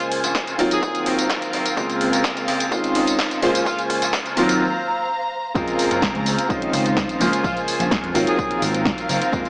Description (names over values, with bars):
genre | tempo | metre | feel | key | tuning
filtered disco house | 127 BPM | 4/4 | straight | unclear | A4 = 440 Hz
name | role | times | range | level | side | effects
bright horn section | melody | 0.0-3.8, 7.4-8.6 s | F4 to Ab4 | -26 LUFS | equal | sidechain pumping, low-pass filter
warm concert grand piano | accompaniment | 0.0-9.5 s | Db3 to C5 | -22 LUFS | equal | phaser, sidechain pumping, low-pass filter
warm symphonic violin section | sustained chords | 0.0-9.5 s | C4 to Bb5 | -26 LUFS | equal | vintage 12-bit sampler grit, sidechain pumping, low-pass filter
electric guitar with an envelope filter | riff | 0.0-9.5 s | Gb3 to C5 | -27 LUFS | equal | sidechain pumping, low-pass filter
punchy analog drum machine | drums | 0.0-9.5 s | hi-hat, snare drum, tambourine | -25 LUFS | equal | sidechain pumping on hats, high-pass filter on hats, high-pass filter on snare, sidechain pumping on perc, high-pass filter on perc
vintage slap bass | bass | 0.2-9.4 s | Gb1 to Gb2 | -27 LUFS | equal | transformer saturation, sidechain pumping, high-pass filter, low-pass filter
electronic kick drum | drums | 0.4-9.4 s | none | -27 LUFS | equal | high-pass filter on kick
room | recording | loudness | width
moderate echo chamber reverb, RT60 1.3 s, small room ambience | dry, gritty hardware recording, small speaker sound | -18 LUFS | side -40 dB against mid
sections
0.0-5.6 A section; 5.6-9.5 B section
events
build-up 0.0-5.6; break 4.6-5.6; drop 5.6-9.5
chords
0.0 Bbm9; 0.6 Ab13; 1.8 Gbmaj9#11; 2.7 Dbmaj9; 3.4 Bbm9; 4.4 Ab13 (rootless); 5.6 Gbmaj9#11; 6.5 Dbmaj9; 7.2 Bbm9; 8.2 Ab13